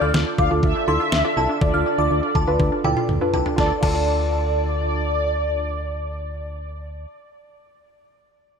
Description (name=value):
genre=synth-pop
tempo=122 BPM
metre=4/4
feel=straight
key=D minor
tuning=A4 = 440 Hz
part: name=mellow synth brass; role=melody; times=0.0-7.1 s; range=D5 to F5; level=-26 LUFS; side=equal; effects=chorus, phaser, tape echo
part: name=glassy synth bell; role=second line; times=0.0-5.0 s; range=G5 to F6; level=-27 LUFS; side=left 1 dB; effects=chorus, tape echo
part: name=soft round pluck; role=accompaniment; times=0.0-7.1 s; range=F4 to D5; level=-26 LUFS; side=equal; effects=chorus, tape echo
part: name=brassy analog pad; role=sustained chords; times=0.0-6.8 s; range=D3 to A4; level=-29 LUFS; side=right 3 dB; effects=chorus
part: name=resonant blip pluck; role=arpeggios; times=0.0-7.2 s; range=D4 to D5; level=-30 LUFS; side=left 2 dB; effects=phaser, tape echo
part: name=solid FM bass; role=bass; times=0.0-7.1 s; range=C2 to D2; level=-24 LUFS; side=equal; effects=none
part: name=detuned 8-bit digital drum machine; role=drums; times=0.1-4.0 s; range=crash cymbal, kick drum, snare drum, toms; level=-24 LUFS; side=equal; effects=overdrive
room=moderate echo chamber reverb, RT60 1.7 s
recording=echo-heavy mix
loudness=-18 LUFS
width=side -6 dB against mid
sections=0.0-3.6 A section; 3.6-7.5 B section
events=drum fill 2.6-3.6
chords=0.0 Dm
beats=0.14 0.63 1.12 | 1.61 2.11 2.60 3.09 | 3.58 4.07 4.57 5.06 | 5.55 6.04 6.53 7.02